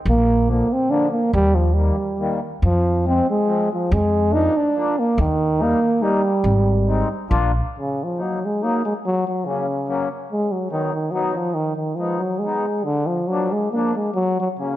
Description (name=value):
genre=alpine folk, alpine dance band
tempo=141 BPM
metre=3/4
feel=swing 54% on 8ths, rubato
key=Eb minor from 7.7 s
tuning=A4 = 440 Hz
part: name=warm euphonium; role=melody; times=0.1-14.8 s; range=Db3 to Eb4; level=-20 LUFS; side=right 1 dB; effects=none
part: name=upright bass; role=bass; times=0.1-7.6 s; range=Ab1 to F2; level=-19 LUFS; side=equal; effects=none
part: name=mellow accordion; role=accompaniment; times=0.5-14.8 s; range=D3 to F4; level=-26 LUFS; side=left 3 dB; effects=none
room=moderate recital hall reverb, RT60 1.5 s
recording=dark, warm production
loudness=-18 LUFS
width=side -14 dB against mid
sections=0.0-7.7 A section; 7.7-14.8 B section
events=none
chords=0.1 Bb; 1.3 Eb; 2.6 Fm; 3.9 Bb7/F; 5.2 Eb; 6.4 Ab; 7.3 Bb; 7.7 Ebm; 9.0 Gb; 10.3 B; 11.6 Abm; 12.9 Bb; 14.2 Gb